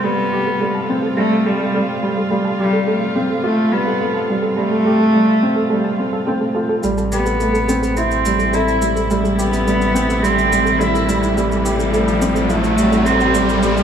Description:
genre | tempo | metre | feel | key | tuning
piano and strings electronica | 106 BPM | 4/4 | straight | A minor | A4 = 440 Hz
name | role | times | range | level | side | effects
warm cello | melody | 0.0-13.6 s | G3 to E4 | -18 LUFS | equal | digital delay
dark string quartet | sustained chords | 0.0-13.8 s | C3 to A4 | -24 LUFS | left 1 dB | none
soft round pluck | arpeggios | 0.0-13.8 s | A4 to A5 | -27 LUFS | right 3 dB | chorus, digital delay
dark upright piano | riff | 0.0-13.8 s | G3 to A4 | -19 LUFS | right 1 dB | digital delay
warm sub bass | bass | 6.8-13.8 s | A1 | -23 LUFS | equal | none
shaker | drums | 6.8-13.8 s | none | -32 LUFS | equal | overdrive, high-pass filter on perc, high-pass filter on room
riser | sound effects | 9.5-13.8 s | none | -24 LUFS | equal | none
room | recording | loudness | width
moderate echo chamber reverb, RT60 2.4 s | none | -14 LUFS | side -8 dB against mid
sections
0.0-6.8 A section; 6.8-13.8 B section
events
filter sweep on synth arpeggio sound 0.0-6.8; build-up 6.8-13.8; riser 9.5-13.8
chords
0.0 Fadd9; 6.8 Am7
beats
| 0.04 0.61 1.18 1.74 | 2.31 2.87 3.44 4.00 | 4.57 5.14 5.70 6.27 | 6.83 7.40 7.97 8.53 | 9.10 9.66 10.23 10.80 | 11.36 11.93 12.50 13.06 | 13.63

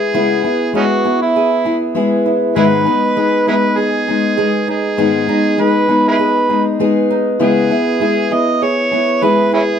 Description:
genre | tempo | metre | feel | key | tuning
pop | 99 BPM | 4/4 | straight | C# minor | A4 = 440 Hz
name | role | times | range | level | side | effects
overdriven harmonica | melody | 0.0-9.8 s | C#4 to D#5 | -16 LUFS | right 2 dB | none
picked steel-string acoustic guitar | accompaniment | 0.0-9.8 s | G#2 to G#4 | -15 LUFS | left 4 dB | none
flamenco guitar | arpeggios | 0.0-9.8 s | B3 to G#4 | -20 LUFS | right 4 dB | none
room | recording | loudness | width
moderate studio reverb, RT60 0.8 s | minimal, uncompressed stereo recording | -12 LUFS | side -8 dB against mid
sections
0.0-9.8 A section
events
none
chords
0.0 C#m7 (rootless); 2.6 G#m; 7.4 C#m7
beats
| 0.14 0.75 1.35 1.96 | 2.56 3.17 3.77 4.38 | 4.99 5.59 6.20 6.80 | 7.40 8.01 8.61 9.22

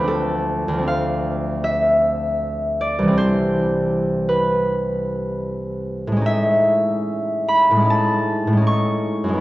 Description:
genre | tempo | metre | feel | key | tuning
classical, solo harp piece | 70-82 BPM | 4/4 | rubato | unclear | A4 = 439 Hz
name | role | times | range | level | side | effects
concert harp | solo | 0.0-9.4 s | C2 to C#6 | -17 LUFS | equal | none
room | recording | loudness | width
wet church reverb, RT60 2.7 s | worn, warbling old tape, cassette tape, warbly pitch drift | -17 LUFS | side -17 dB against mid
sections
0.0-9.4 A section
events
none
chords
0.1 Dm7; 3.2 Cmaj9; 6.3 Amaj7#11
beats
| 0.07 0.89 1.66 2.42 | 3.19 3.93 4.68 5.44 | 6.26 7.07 7.89 8.66

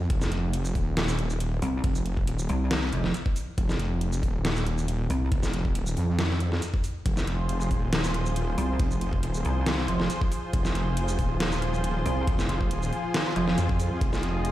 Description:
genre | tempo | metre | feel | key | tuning
heavy wobble dubstep | 138 BPM | 4/4 | half-time | F minor | A4 = 438 Hz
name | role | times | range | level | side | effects
wobble bass | bass | 0.0-14.5 s | Eb1 to F2 | -27 LUFS | equal | chorus, overdrive
dubstep drum kit | drums | 0.1-14.5 s | hi-hat, shaker, snare drum | -31 LUFS | equal | none
electronic kick drum | drums | 0.1-14.1 s | none | -27 LUFS | equal | none
pulsing pluck wobble bass | bass | 1.6-5.3, 8.6-13.6 s | F1 to C2 | -25 LUFS | equal | chorus, overdrive
lush unison pad | sustained chords | 7.1-14.5 s | F3 to Eb5 | -32 LUFS | equal | chorus, sidechain pumping
room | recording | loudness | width
light reverb | played on a big sound system in a bare room, large studio reverb | -24 LUFS | side -14 dB against mid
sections
0.0-14.5 A section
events
none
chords
0.0 Fm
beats
| 0.10 0.54 0.97 1.41 | 1.84 2.27 2.71 3.14 | 3.58 4.01 4.45 4.88 | 5.32 5.75 6.19 6.62 | 7.06 7.49 7.93 8.36 | 8.80 9.23 9.67 10.10 | 10.54 10.97 11.40 11.84 | 12.27 12.71 13.14 13.58 | 14.01 14.45

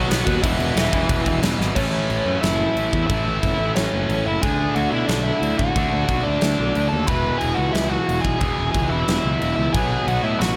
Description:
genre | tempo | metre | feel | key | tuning
punk rock | 180 BPM | 4/4 | straight | unclear | A4 = 436 Hz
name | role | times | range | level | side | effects
biting lead guitar | melody | 0.0-10.6 s | E3 to B5 | -26 LUFS | equal | overdrive
distorted electric guitar | riff | 0.0-10.6 s | E2 to D4 | -26 LUFS | equal | overdrive
fuzz picked electric bass | bass | 0.0-10.6 s | E1 to B2 | -27 LUFS | equal | overdrive
big rock drum kit | drums | 0.1-10.5 s | crash cymbal, kick drum, snare drum | -27 LUFS | equal | none
room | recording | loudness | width
little or no reverb | none | -21 LUFS | mono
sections
0.0-1.8 A section; 1.8-10.6 B section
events
drum fill 1.6; half time 1.8-10.6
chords
0.4 E5; 1.8 A; 4.4 D; 7.1 E; 9.7 B5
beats
0.10 | 0.43 0.77 1.10 1.43 | 1.76 2.10 2.43 2.76 | 3.09 3.43 3.76 4.09 | 4.43 4.76 5.09 5.42 | 5.76 6.09 6.42 6.75 | 7.09 7.42 7.75 8.08 | 8.41 8.75 9.08 9.41 | 9.74 10.07 10.40

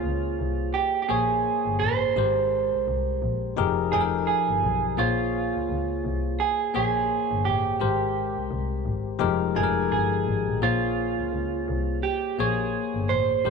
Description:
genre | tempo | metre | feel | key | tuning
R&B, neo-soul | 85 BPM | 4/4 | swing 57% on 16ths | Bb dorian | A4 = 440 Hz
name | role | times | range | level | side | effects
electric guitar through a small old amp | melody | 0.0-13.5 s | F4 to C5 | -26 LUFS | right 9 dB | spring reverb
bell-like tine electric piano | accompaniment | 0.0-13.5 s | F3 to G5 | -28 LUFS | left 12 dB | wide subtle chorus
warm double bass | bass | 0.0-13.5 s | F1 to Db2 | -29 LUFS | left 2 dB | none
room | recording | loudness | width
moderate plate reverb, RT60 3.0 s | 1960s-style stereo with parts hard left and right | -23 LUFS | side -5 dB against mid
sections
0.0-13.5 A section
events
none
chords
0.0 Bbm9; 2.1 Abmaj9; 3.6 Fm11; 5.0 Bbm9; 7.8 Abmaj9; 9.2 Fm11; 10.6 Bbm9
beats
0.02 0.73 1.44 | 2.14 2.85 3.55 4.26 | 4.96 5.67 6.38 7.08 | 7.79 8.49 9.20 9.91 | 10.61 11.32 12.02 12.73 | 13.44

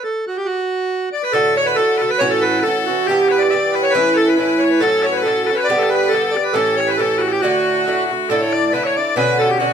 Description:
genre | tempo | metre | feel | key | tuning
celtic folk, Celtic polka | 138 BPM | 2/4 | swing 54% on 8ths | D major | A4 = 440 Hz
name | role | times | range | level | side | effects
accordion | melody | 0.0-9.7 s | F#4 to D5 | -17 LUFS | right 1 dB | plate reverb
loud bright bagpipes | second line | 1.1-9.7 s | F#4 to E5 | -22 LUFS | left 10 dB | none
Irish bouzouki | accompaniment | 1.3-9.7 s | G2 to G4 | -18 LUFS | right 2 dB | none
room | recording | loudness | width
moderate studio reverb, RT60 0.5 s | none | -14 LUFS | side -8 dB against mid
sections
0.0-1.3 A section; 1.3-8.3 A section; 8.3-9.7 B section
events
none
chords
0.0 N.C.; 1.3 D; 2.2 A6; 3.1 Em; 3.9 A; 4.8 F#m; 5.7 G; 6.6 A7; 7.4 D; 8.3 Dsus2; 9.2 Bmadd9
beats
0.03 | 0.46 0.90 | 1.34 1.77 | 2.21 2.64 | 3.08 3.52 | 3.95 4.38 | 4.82 5.25 | 5.69 6.12 | 6.56 6.99 | 7.42 7.86 | 8.29 8.72 | 9.16 9.59

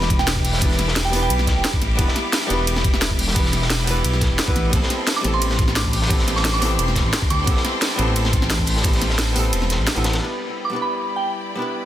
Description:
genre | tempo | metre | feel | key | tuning
liquid drum and bass | 175 BPM | 4/4 | straight | A minor | A4 = 440 Hz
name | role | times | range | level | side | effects
soft synth bell | melody | 0.0-1.7, 5.2-7.6, 10.6-11.4 s | G5 to D6 | -26 LUFS | right 3 dB | chorus, digital delay
archtop guitar, miked and amplified | accompaniment | 0.0-11.9 s | G3 to B4 | -26 LUFS | equal | ping-pong delay
bright symphonic string section | sustained chords | 0.0-11.9 s | E4 to D6 | -28 LUFS | left 1 dB | sidechain pumping
dark detuned saw bass | bass | 0.0-10.2 s | E1 to D2 | -22 LUFS | equal | none
crunchy breakbeat drum kit | drums | 0.0-10.2 s | hi-hat, ride cymbal, snare drum | -28 LUFS | equal | high-pass filter on cymbals, high-pass filter on hats, high-pass filter on snare, high-pass filter on room
drum and bass drum kit | drums | 0.0-10.2 s | hi-hat, ride cymbal, snare drum | -24 LUFS | equal | overdrive
electronic kick drum | drums | 0.1-8.9 s | none | -21 LUFS | equal | none
room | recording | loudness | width
light reverb, studio ambience | dense, heavily limited modern master | -17 LUFS | side -12 dB against mid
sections
0.0-10.2 A section; 10.2-11.9 B section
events
drop 0.0-10.2; kick drops out 9.5-10.2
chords
0.0 Em7; 4.7 Am9; 10.2 Em7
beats
0.27 | 0.62 0.96 1.30 1.65 | 1.99 2.33 2.67 3.02 | 3.36 3.70 4.04 4.39 | 4.73 5.07 5.42 5.76 | 6.10 6.45 6.79 7.13 | 7.47 7.82 8.16 8.50 | 8.85 9.19 9.53 9.87 | 10.22 10.56 10.90 11.24 | 11.59

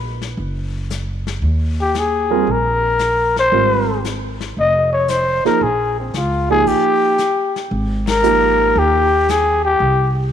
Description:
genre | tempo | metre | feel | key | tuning
jazz, small-group swing and bop | 114 BPM | 4/4 | swing 69% on 8ths | Ab major | A4 = 441 Hz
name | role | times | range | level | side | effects
upright bass | bass | 0.0-10.3 s | F1 to Eb2 | -21 LUFS | equal | none
vintage brush drum kit | drums | 0.2-10.3 s | brushed snare drum, crash cymbal, hi-hat, kick drum, ride cymbal, snare drum | -30 LUFS | left 8 dB | none
growling trumpet | melody | 1.8-10.1 s | C4 to Eb5 | -16 LUFS | left 2 dB | slapback echo
warm grand piano | accompaniment | 2.3-9.0 s | F3 to Bb4 | -20 LUFS | right 12 dB | none
room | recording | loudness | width
moderate echo chamber reverb, RT60 2.1 s | 1960s-style stereo with parts hard left and right | -14 LUFS | side -9 dB against mid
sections
0.0-7.7 A section; 7.7-10.3 B section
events
band accent 8.0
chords
0.0 N.C.; 1.4 Eb5; 3.5 Abmaj7; 4.6 Bb9sus4/F; 5.6 Bbm; 6.7 Eb; 7.7 Absus2; 9.8 C5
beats
0.37 0.90 | 1.42 1.94 2.47 2.99 | 3.52 4.04 4.56 5.09 | 5.61 6.13 6.66 7.18 | 7.71 8.23 8.75 9.28 | 9.80

